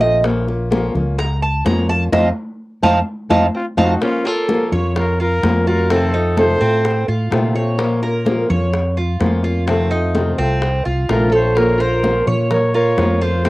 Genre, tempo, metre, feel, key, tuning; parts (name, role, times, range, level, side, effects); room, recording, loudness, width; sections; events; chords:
latin, Cuban son and guajira; 127 BPM; 4/4; straight; Bb harmonic minor; A4 = 441 Hz
fingerpicked old ladder-braced acoustic guitar; accompaniment; 0.0-13.5 s; C3 to F4; -21 LUFS; left 2 dB; cassette tape
Cuban tres; arpeggios; 0.0-13.5 s; Bb3 to Bb5; -21 LUFS; right 2 dB; cassette tape
mellow fretless electric bass; bass; 0.0-13.5 s; Bb1 to Bb2; -19 LUFS; equal; analog chorus
bongos; percussion; 0.0-13.5 s; -26 LUFS; left 3 dB
congas; percussion; 0.0-13.5 s; -24 LUFS; equal
nylon-string guitar; second line; 3.5-7.0, 11.1-13.5 s; C4 to Bb4; -21 LUFS; right 2 dB; cassette tape
breathy trumpet; melody; 3.6-7.0, 11.1-13.5 s; F4 to Db5; -20 LUFS; left 1 dB; cassette tape
moderate booth ambience, RT60 0.3 s; home recording on cassette; -14 LUFS; side -19 dB against mid
0.0-4.0 A section; 4.0-13.5 B section
Cuban tres solo 0.0-4.0; band accent 2.1-4.0; drum fill 3.1-4.0
0.2 Bbm; 2.1 F7; 4.0 Bbm; 5.9 F7; 7.8 Bbm; 9.7 F7; 11.6 Bbm